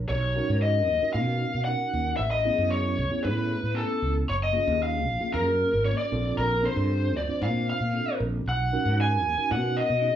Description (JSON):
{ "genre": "electric jazz fusion", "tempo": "115 BPM", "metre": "4/4", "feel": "straight", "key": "B lydian", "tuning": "A4 = 441 Hz", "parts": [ { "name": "mellow tine electric piano", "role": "accompaniment", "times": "0.0-10.2 s", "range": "A#3 to B#4", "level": "-32 LUFS", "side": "right 2 dB", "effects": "medium stereo tremolo" }, { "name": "mellow fretless electric bass", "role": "bass", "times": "0.0-10.1 s", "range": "F#1 to B2", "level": "-27 LUFS", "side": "right 1 dB", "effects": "none" }, { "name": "lead guitar through a small cranked amp", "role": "melody", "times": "0.1-10.2 s", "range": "A4 to G#5", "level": "-26 LUFS", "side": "left 2 dB", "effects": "overdrive" } ], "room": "light reverb", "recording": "band playing live in one room, small room ambience", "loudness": "-23 LUFS", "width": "side -10 dB against mid", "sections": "0.1-10.2 A section", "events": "none", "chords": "0.1 Bmaj9; 2.2 Amaj9; 4.3 F#maj9; 6.1 A#maj9; 8.5 Bmaj9", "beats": "| 0.10 0.62 1.14 1.67 | 2.19 2.71 3.23 3.76 | 4.28 4.80 5.32 5.85 | 6.37 6.89 7.42 7.94 | 8.46 8.98 9.51 10.03" }